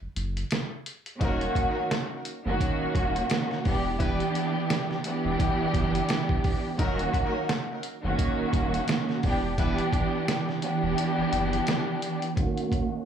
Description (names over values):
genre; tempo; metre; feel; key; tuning
hip hop, boom-bap hip-hop; 86 BPM; 4/4; swing 58% on 16ths; unclear; A4 = 441 Hz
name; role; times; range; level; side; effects
saturated sub bass; bass; 0.0-11.6 s; Eb1 to Gb1; -32 LUFS; equal; none
trip hop sampler-style drum kit; drums; 0.2-12.9 s; hi-hat, kick drum, snare drum; -29 LUFS; right 1 dB; none
warm studio string section; accompaniment; 1.2-13.1 s; Eb3 to G4; -27 LUFS; right 2 dB; cassette tape, high-pass filter, low-pass filter, plate reverb
warm horn section; stabs; 1.2-9.8 s; Gb3 to B4; -37 LUFS; left 2 dB; high-pass filter, low-pass filter, digital delay, plate reverb
room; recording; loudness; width
moderate studio reverb, RT60 0.6 s; small room ambience; -25 LUFS; side -8 dB against mid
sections
0.0-12.4 A section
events
break 0.0-1.2; kick muted 11.0-12.4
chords
0.0 N.C.; 1.2 Ebm7; 3.6 Em7; 6.8 Ebm7; 9.2 Em7; 12.4 Ebm7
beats
0.51 | 1.21 1.91 2.60 3.30 | 4.00 4.70 5.39 6.09 | 6.79 7.49 8.18 8.88 | 9.58 10.28 10.97 11.67 | 12.37